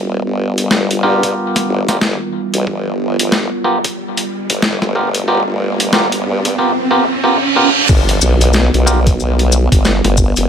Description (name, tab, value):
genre	glitch hop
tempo	92 BPM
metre	4/4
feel	swing 60% on 16ths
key	unclear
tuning	A4 = 440 Hz
part	warbly tape-like pad	sustained chords	0.0-10.5 s	G3 to A#4	-21 LUFS	right 1 dB	chorus, built-in reverb, sidechain pumping
part	formant-sweep wobble bass	bass	0.0-10.5 s	F1 to G2	-16 LUFS	equal	chorus, high-pass filter
part	riser, reverse cymbal and impact	sound effects	0.6-10.5 s	none	-20 LUFS	right 3 dB	none
part	boom bap sampler-style drum kit	drums	0.6-10.5 s	crash cymbal, hi-hat, snare drum	-16 LUFS	left 1 dB	none
part	overdriven clav	stabs	1.0-9.0 s	B3 to A#4	-17 LUFS	right 1 dB	sidechain pumping, ping-pong delay
part	electronic kick drum	drums	1.2-10.3 s	none	-14 LUFS	equal	high-pass filter on kick
part	maracas	percussion	7.9-10.5 s	none	-19 LUFS	left 6 dB	none
room	light reverb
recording	none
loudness	-12 LUFS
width	side -8 dB against mid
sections	0.0-7.9 A section; 7.9-10.5 B section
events	build-up 0.0-7.9; riser 0.6-7.9; reverse cymbal 6.6-7.9; drop 7.9-10.5; impact 7.9-10.5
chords	0.0 G7#9